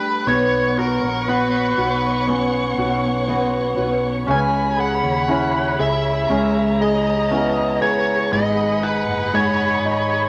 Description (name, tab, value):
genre	pop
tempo	59 BPM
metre	4/4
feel	straight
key	B major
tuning	A4 = 440 Hz
part	smooth overdriven lead guitar	melody	0.0-10.3 s	A#4 to G#5	-24 LUFS	equal	none
part	clear concert grand piano	accompaniment	0.0-10.3 s	G3 to G#4	-26 LUFS	equal	none
part	warm studio string section	sustained chords	0.0-10.3 s	B3 to C#6	-27 LUFS	equal	none
part	fingerpicked steel-string acoustic guitar	arpeggios	0.0-10.3 s	G#2 to B4	-26 LUFS	equal	none
part	fretless electric bass	bass	0.3-10.3 s	F#1 to D#2	-29 LUFS	equal	none
room	wet small room reverb, RT60 0.6 s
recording	none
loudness	-19 LUFS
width	mono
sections	0.0-10.3 A section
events	none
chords	0.3 Bsus2; 4.3 C#m7; 8.3 G#m7